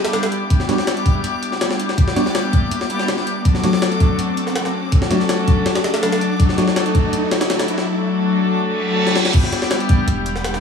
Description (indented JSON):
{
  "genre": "drum and bass, jungle",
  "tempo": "163 BPM",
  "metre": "4/4",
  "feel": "straight",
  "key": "E dorian",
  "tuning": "A4 = 441 Hz",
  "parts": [
    { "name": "dark chamber string section", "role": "sustained chords", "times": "0.0-10.6 s", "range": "F#3 to A4", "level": "-20 LUFS", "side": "left 3 dB", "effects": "none" },
    { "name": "jungle sampler-style drum kit", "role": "drums", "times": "0.0-10.6 s", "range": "crash cymbal, hi-hat, kick drum, snare drum", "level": "-18 LUFS", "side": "left 1 dB", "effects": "overdrive" },
    { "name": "riser and reverse cymbal", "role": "sound effects", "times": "0.0-9.3 s", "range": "none", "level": "-26 LUFS", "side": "right 2 dB", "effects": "none" },
    { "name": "backwards swelling texture", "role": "texture", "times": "0.0-10.6 s", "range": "C#6 to D6", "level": "-30 LUFS", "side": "left 4 dB", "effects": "built-in reverb" },
    { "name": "bright tine electric piano", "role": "stabs", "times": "0.7-6.6 s", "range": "F#3 to F#4", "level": "-23 LUFS", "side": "right 1 dB", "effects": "phaser, dub echo" },
    { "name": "long sustained 808-style bass", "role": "bass", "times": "10.1-10.6 s", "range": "E1", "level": "-22 LUFS", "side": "equal", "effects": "none" }
  ],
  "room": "light reverb",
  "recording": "small room ambience",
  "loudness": "-15 LUFS",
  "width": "side -6 dB against mid",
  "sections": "0.0-9.3 A section; 9.3-10.6 B section",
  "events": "build-up 0.0-9.3; riser 0.0-7.9; reverse cymbal 8.7-9.3; drum fill 9.1; drop 9.3-10.6",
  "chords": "0.0 Em7; 3.5 D; 9.3 Em7"
}